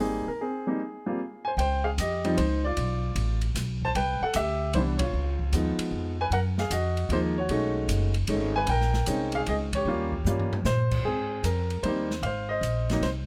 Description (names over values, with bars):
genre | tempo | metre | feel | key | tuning
jazz piano trio | 152 BPM | 3/4 | swing 66% on 8ths | Ab major | A4 = 441 Hz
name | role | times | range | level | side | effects
warm baby grand piano | melody | 0.0-13.1 s | E3 to A5 | -30 LUFS | equal | plate reverb
upright bass | bass | 0.0-13.3 s | F#1 to Bb2 | -31 LUFS | equal | none
open jazz drum kit | drums | 0.0-13.2 s | crash cymbal, hi-hat, kick drum, ride cymbal, snare drum, toms | -38 LUFS | equal | none
room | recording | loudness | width
light reverb | none | -27 LUFS | mono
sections
0.0-1.6 A section; 1.6-11.1 B section; 11.1-13.3 A section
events
band accent 4.9, 9.7; drum fill 10.3-10.7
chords
0.0 Abmaj7; 1.6 Dbmaj9#11; 2.8 Bm7b5; 4.0 Cmaj7; 5.1 Db9; 6.3 Gbmaj7sus2; 7.5 B13; 8.7 Bbm11; 9.9 Eb7; 11.1 Ab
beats
0.01 | 0.41 0.80 1.20 | 1.59 1.98 2.38 | 2.77 3.17 3.56 | 3.96 4.35 4.74 | 5.14 5.53 5.92 | 6.32 6.71 7.11 | 7.50 7.90 8.29 | 8.69 9.08 9.47 | 9.87 10.26 10.66 | 11.05 11.45 11.85 | 12.24 12.64 13.03